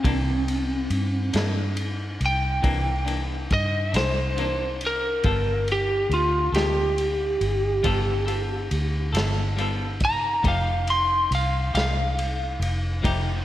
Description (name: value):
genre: slow blues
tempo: 46 BPM (dotted quarters)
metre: 12/8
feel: straight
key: C mixolydian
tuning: A4 = 441 Hz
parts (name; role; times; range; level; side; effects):
- lightly driven lead guitar; melody; 0.0-13.4 s; C4 to C6; -25 LUFS; equal; slapback echo
- clean electric guitar; accompaniment; 0.0-13.3 s; C3 to A4; -31 LUFS; left 2 dB; tremolo, slapback echo
- vintage muted fingered electric bass; bass; 0.0-13.4 s; F1 to G2; -26 LUFS; equal; none
- vintage drum kit; drums; 0.0-13.2 s; kick drum, ride cymbal, snare drum; -29 LUFS; equal; none
room: moderate lush hall reverb, RT60 1.9 s, small room ambience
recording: big arena sound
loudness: -21 LUFS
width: side -13 dB against mid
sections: 0.0-13.4 A section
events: lead electric guitar solo 0.0-13.4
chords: 0.0 C9; 5.2 G9; 10.4 F9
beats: | 0.05 1.35 2.65 3.95 | 5.25 6.55 7.84 9.14 | 10.44 11.74 13.04